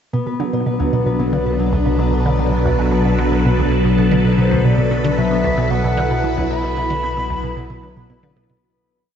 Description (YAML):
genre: ambient, sequencer-driven space music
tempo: 113 BPM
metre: 4/4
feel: straight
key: B minor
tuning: A4 = 438 Hz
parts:
  - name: phased string machine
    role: sustained chords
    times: 0.1-8.6 s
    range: B2 to B4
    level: -19 LUFS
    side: left 1 dB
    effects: ensemble chorus, phaser
  - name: concert harp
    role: arpeggios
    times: 0.1-9.2 s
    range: F#3 to B4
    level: -24 LUFS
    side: left 2 dB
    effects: auto-pan, ping-pong delay
  - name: resonant blip pluck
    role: riff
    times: 0.1-8.6 s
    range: D2 to D3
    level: -22 LUFS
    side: right 1 dB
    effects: phaser, ping-pong delay
  - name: analog drone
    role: bass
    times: 1.1-8.6 s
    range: B1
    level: -21 LUFS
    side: equal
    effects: chorus
  - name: bubbling stepped-filter texture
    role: texture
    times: 0.1-8.6 s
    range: B4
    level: -36 LUFS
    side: right 7 dB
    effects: none
  - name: mellow silver concert flute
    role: melody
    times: 4.4-8.1 s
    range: C5 to B5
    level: -23 LUFS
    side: left 1 dB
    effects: ping-pong delay
room: wet cathedral reverb, RT60 5.6 s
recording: in a vast, echoing space, nothing above 8.0 kHz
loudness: -15 LUFS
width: side -8 dB against mid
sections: 0.1-8.6 A section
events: fade-out 5.8-8.6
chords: 0.1 Bm7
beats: | 0.13 0.66 1.19 1.73 | 2.26 2.79 3.32 3.85 | 4.38 4.91 5.44 5.97 | 6.50 7.04 7.57 8.10